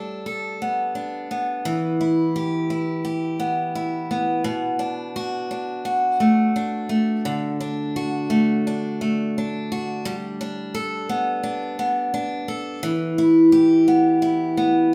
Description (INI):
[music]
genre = pop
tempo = 86 BPM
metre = 4/4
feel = swing 60% on 16ths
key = D major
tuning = A4 = 438 Hz
[part]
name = picked steel-string acoustic guitar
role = solo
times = 0.0-14.9 s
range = B2 to A4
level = -22 LUFS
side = equal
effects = none
[sound]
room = wet studio reverb, RT60 0.9 s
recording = heard from further back in the room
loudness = -22 LUFS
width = mono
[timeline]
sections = 0.0-7.3 A section; 7.3-14.9 B section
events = none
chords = 0.0 Gadd9; 1.7 Em; 4.5 Bm7; 7.3 D; 10.0 Gadd9; 12.8 Em